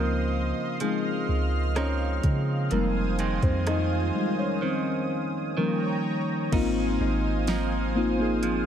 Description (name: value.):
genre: contemporary R&B.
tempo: 63 BPM.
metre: 4/4.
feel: straight.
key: unclear.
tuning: A4 = 442 Hz.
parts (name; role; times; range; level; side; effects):
mellow FM electric piano; accompaniment; 0.0-8.7 s; F3 to Eb5; -27 LUFS; left 3 dB; chorus.
lush unison pad; sustained chords; 0.0-8.7 s; C5 to F6; -33 LUFS; right 2 dB; chorus, sidechain pumping.
clean electric guitar; arpeggios; 0.0-8.7 s; F2 to Eb4; -32 LUFS; right 6 dB; ping-pong delay.
long sustained 808-style bass; bass; 0.0-8.7 s; F1 to Db3; -28 LUFS; equal; none.
swell; sound effects; 3.3-4.6 s; none; -40 LUFS; right 6 dB; none.
smooth R&B drum kit; drums; 0.8-8.6 s; crash cymbal, hi-hat, kick drum, rim click, snare drum; -29 LUFS; equal; none.
kora; texture; 7.0-8.7 s; Ab3; -41 LUFS; left 6 dB; ping-pong delay.
room: light reverb.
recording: none.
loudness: -24 LUFS.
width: side -9 dB against mid.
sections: 0.0-6.5 A section; 6.5-8.7 B section.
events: FM electric piano solo 0.0-6.5; break 4.6-6.5.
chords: 0.0 Dbmaj9; 2.7 Fm7; 6.5 Ab6.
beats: 0.81 1.76 | 2.71 3.67 4.62 5.57 | 6.52 7.47 8.43.